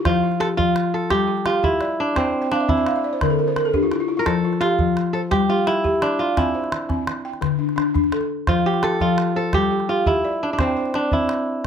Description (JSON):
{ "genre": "west african traditional, West African string and xylophone music", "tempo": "114 BPM (dotted quarters)", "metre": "12/8", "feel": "straight", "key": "F major", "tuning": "A4 = 440 Hz", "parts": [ { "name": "balafon", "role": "arpeggios", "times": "0.0-11.7 s", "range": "D3 to G5", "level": "-22 LUFS", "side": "left 3 dB", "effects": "none" }, { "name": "kora", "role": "melody", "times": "0.1-11.7 s", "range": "C4 to Bb4", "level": "-21 LUFS", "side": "right 2 dB", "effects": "none" }, { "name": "calabash", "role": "percussion", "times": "0.1-11.7 s", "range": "none", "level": "-25 LUFS", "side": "right 2 dB", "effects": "none" } ], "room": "little or no reverb", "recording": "close, detailed microphones", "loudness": "-18 LUFS", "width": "side -7 dB against mid", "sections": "0.1-11.7 A section", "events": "balafon fill 2.4-4.3", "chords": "0.1 F5; 1.1 G5; 2.2 C; 3.2 N.C.; 4.3 F; 5.3 G5; 6.4 C; 7.4 D5; 8.5 F; 9.5 G5; 10.6 C" }